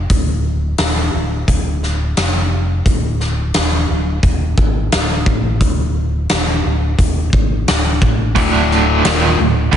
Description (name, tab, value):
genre	hard rock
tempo	87 BPM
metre	4/4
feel	straight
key	D minor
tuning	A4 = 440 Hz
part	fingered electric bass	bass	0.0-9.8 s	D1 to A1	-18 LUFS	equal	none
part	big rock drum kit	drums	0.1-9.8 s	hi-hat, kick drum, snare drum	-16 LUFS	equal	none
part	overdriven electric guitar	riff	8.3-9.8 s	D2 to Eb3	-17 LUFS	left 10 dB	none
part	cranked stack guitar	riff	8.4-9.8 s	D2 to Eb3	-15 LUFS	right 9 dB	overdrive, tremolo, slapback echo
room	light reverb, small room reverb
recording	nothing above 10.5 kHz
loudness	-13 LUFS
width	side -9 dB against mid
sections	0.0-9.8 A section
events	none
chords	0.0 N.C.; 2.9 D5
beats	| 0.11 0.79 1.48 2.17 | 2.86 3.55 4.23 4.92 | 5.61 6.29 6.98 7.67 | 8.35 9.04 9.72